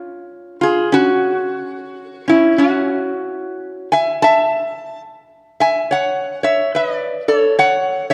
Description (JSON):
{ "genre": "hawaiian", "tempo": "72 BPM", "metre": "4/4", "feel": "swing 63% on 8ths", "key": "A major from 4.2 s", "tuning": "A4 = 443 Hz", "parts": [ { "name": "metal-body resonator slide guitar", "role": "solo", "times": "0.0-8.1 s", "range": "C#4 to A5", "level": "-17 LUFS", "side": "equal", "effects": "none" } ], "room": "wet concert hall reverb, RT60 1.9 s", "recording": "dark, warm production", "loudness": "-17 LUFS", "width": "mono", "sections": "0.0-4.2 A section; 4.2-8.1 B section", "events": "none", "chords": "0.0 C#; 0.9 F#5; 4.2 Aadd9", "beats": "0.06 | 0.89 1.72 2.55 3.38 | 4.21 5.05 5.88 6.71 | 7.54" }